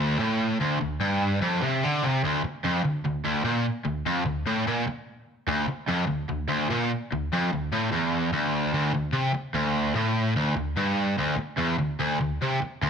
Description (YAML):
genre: rock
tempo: 147 BPM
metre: 4/4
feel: straight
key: D minor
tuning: A4 = 442 Hz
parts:
  - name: cranked stack guitar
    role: solo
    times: 0.0-12.9 s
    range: D2 to D3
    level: -24 LUFS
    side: equal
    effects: overdrive
room: moderate large studio reverb, RT60 1.2 s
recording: dense, heavily limited modern master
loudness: -24 LUFS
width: side -6 dB against mid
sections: 0.0-2.2 A section; 2.2-8.7 B section; 8.7-12.9 C section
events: none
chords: none